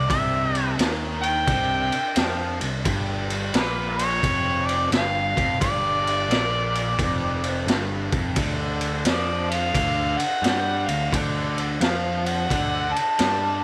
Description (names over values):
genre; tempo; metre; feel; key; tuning
blues rock power trio and southern rock; 87 BPM; 4/4; swing 65% on 8ths; G mixolydian; A4 = 440 Hz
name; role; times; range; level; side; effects
mellow harmonica; melody; 0.0-13.6 s; B4 to A5; -27 LUFS; equal; overdrive
overdriven tonewheel organ; sustained chords; 0.0-13.6 s; D4 to F5; -42 LUFS; equal; none
cranked stack guitar; riff; 0.0-13.6 s; F2 to G3; -31 LUFS; equal; overdrive
overdriven picked electric bass; bass; 0.0-13.6 s; F1 to G2; -32 LUFS; equal; none
raw garage drum kit; drums; 0.1-13.4 s; kick drum, ride cymbal, snare drum; -28 LUFS; equal; none
room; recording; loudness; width
light reverb, small room ambience; none; -23 LUFS; mono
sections
0.0-13.6 A section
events
none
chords
0.0 C7; 2.9 G7; 8.4 D7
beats
| 0.10 0.79 1.47 2.16 | 2.85 3.54 4.23 4.92 | 5.61 6.29 6.99 7.67 | 8.36 9.05 9.74 10.43 | 11.12 11.81 12.50 13.19